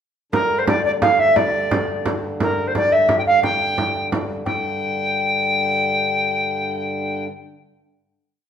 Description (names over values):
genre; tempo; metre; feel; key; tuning
medieval dance; 116 BPM (dotted quarters); 6/8; straight; G dorian; A4 = 440 Hz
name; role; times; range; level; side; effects
bright reedy alto recorder; melody; 0.3-7.2 s; Bb4 to G5; -18 LUFS; equal; none
pedal harmonium; drone; 0.3-7.3 s; G2 to D3; -27 LUFS; equal; none
frame drum; percussion; 0.3-4.6 s; none; -23 LUFS; right 2 dB; none
room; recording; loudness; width
wet large studio reverb, RT60 1.1 s; band playing live in one room; -17 LUFS; side -8 dB against mid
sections
0.3-4.5 A section; 4.5-6.5 final chord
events
none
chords
none